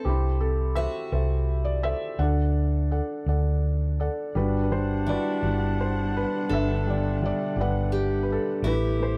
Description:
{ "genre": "acoustic folk-pop ballad", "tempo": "56 BPM (dotted quarters)", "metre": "6/8", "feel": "straight", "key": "G major", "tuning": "A4 = 440 Hz", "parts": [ { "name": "felt-muted upright piano", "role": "melody", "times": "0.0-9.2 s", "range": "D3 to F#5", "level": "-30 LUFS", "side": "equal", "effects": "none" }, { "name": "picked steel-string acoustic guitar", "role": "arpeggios", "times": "0.0-9.2 s", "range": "C4 to A4", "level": "-37 LUFS", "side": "equal", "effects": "none" }, { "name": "hollow-body short-scale fingered electric bass", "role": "bass", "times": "0.1-9.2 s", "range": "G1 to D2", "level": "-28 LUFS", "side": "equal", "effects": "none" }, { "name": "warm symphonic string section", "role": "sustained chords", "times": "4.3-9.2 s", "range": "B2 to F#5", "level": "-42 LUFS", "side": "equal", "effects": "none" }, { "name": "breathy clarinet", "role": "second line", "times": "4.4-9.2 s", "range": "D4 to G4", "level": "-35 LUFS", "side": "equal", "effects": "none" } ], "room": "little or no reverb", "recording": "dark, warm production", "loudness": "-26 LUFS", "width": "mono", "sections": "0.0-4.3 A section; 4.3-9.2 B section", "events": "none", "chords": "0.1 C6; 2.2 D; 4.3 Gmaj7; 8.6 Amadd9" }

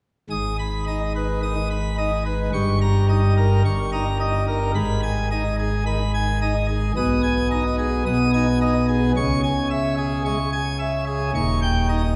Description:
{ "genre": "classical, organ toccata", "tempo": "109 BPM", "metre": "4/4", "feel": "straight", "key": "G# minor", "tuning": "A4 = 440 Hz", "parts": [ { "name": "pipe organ, plenum", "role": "solo", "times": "0.3-12.2 s", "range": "D#1 to D#6", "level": "-22 LUFS", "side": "equal", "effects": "none" } ], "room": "wet church reverb, RT60 3.4 s", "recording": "heard from further back in the room", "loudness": "-22 LUFS", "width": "mono", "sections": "0.3-12.2 A section", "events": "none", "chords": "0.3 G#m; 2.5 D#7/G; 4.8 G#m; 7.0 G#m/B; 9.2 C#m; 11.3 D#7" }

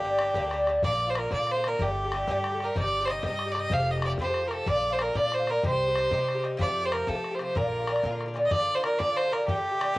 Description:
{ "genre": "celtic folk, Celtic jig", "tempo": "125 BPM (dotted quarters)", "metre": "6/8", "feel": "straight", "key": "Bb major", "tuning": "A4 = 440 Hz", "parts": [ { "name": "bright fiddle", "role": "melody", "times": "0.0-10.0 s", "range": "G4 to F5", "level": "-27 LUFS", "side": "right 1 dB", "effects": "cassette tape" }, { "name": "Irish bouzouki", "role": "accompaniment", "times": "0.0-10.0 s", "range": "G2 to G4", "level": "-30 LUFS", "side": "left 1 dB", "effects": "cassette tape" }, { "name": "upright bass", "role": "bass", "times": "0.0-8.4 s", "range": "F1 to F3", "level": "-35 LUFS", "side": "equal", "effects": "none" }, { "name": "bodhran", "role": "percussion", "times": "0.2-10.0 s", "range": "none", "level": "-34 LUFS", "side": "left 2 dB", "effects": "none" } ], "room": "moderate small room reverb, RT60 0.5 s", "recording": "home recording on cassette", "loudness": "-24 LUFS", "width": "side -19 dB against mid", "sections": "0.8-8.5 A section; 8.5-10.0 A section", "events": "none", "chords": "0.0 Gm; 0.8 Bb; 1.8 Gmadd9; 2.8 Cm/G; 3.7 Fadd9; 4.7 Bb; 5.6 Cm; 6.6 Fadd9; 7.6 Bb; 9.5 Gmadd9" }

